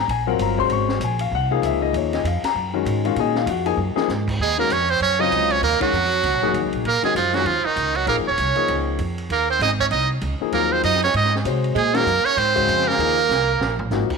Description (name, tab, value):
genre	modal jazz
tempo	195 BPM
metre	4/4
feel	swing 61% on 8ths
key	Eb dorian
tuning	A4 = 440 Hz
part	warm grand piano	accompaniment	0.0-14.1 s	Db3 to Db6	-23 LUFS	left 12 dB	none
part	upright bass	bass	0.0-14.1 s	Eb1 to C3	-25 LUFS	right 2 dB	none
part	compact cocktail drum kit	drums	0.1-14.2 s	crash cymbal, hi-hat, kick drum, ride cymbal, snare drum, toms	-32 LUFS	right 2 dB	none
part	trumpet with metal mute	melody	4.4-13.9 s	Eb4 to Eb5	-21 LUFS	right 2 dB	none
part	edgy tenor saxophone	second line	4.4-13.9 s	Eb3 to Eb4	-23 LUFS	right 12 dB	none
room	moderate echo chamber reverb, RT60 1.8 s, studio reverb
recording	1960s-style stereo with parts hard left and right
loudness	-18 LUFS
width	side -4 dB against mid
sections	0.0-4.4 A section; 4.4-14.2 B section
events	drum fill 3.8-4.1, 13.3-13.9; band accent 5.8, 11.9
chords	0.0 Absus2; 4.4 Ebm9; 9.3 Absus2